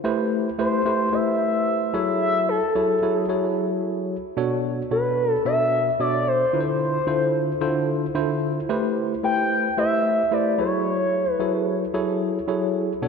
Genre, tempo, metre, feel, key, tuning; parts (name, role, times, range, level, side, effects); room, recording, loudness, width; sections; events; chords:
funk; 111 BPM; 4/4; straight; A4 = 440 Hz
tine electric piano; accompaniment; 0.0-13.1 s; B2 to E5; -23 LUFS; equal; slow stereo tremolo
expressive portamento lead; melody; 0.6-11.6 s; A4 to G5; -23 LUFS; left 1 dB; chorus, ping-pong delay
wet lush hall reverb, RT60 2.6 s; dreamy mix soaked in reverb; -20 LUFS; side -5 dB against mid
0.0-4.4 A section; 4.4-13.1 B section
0.0 Am9; 1.9 F#m9; 4.4 Bm9; 6.5 Dm9; 8.7 Am9; 10.6 F#m9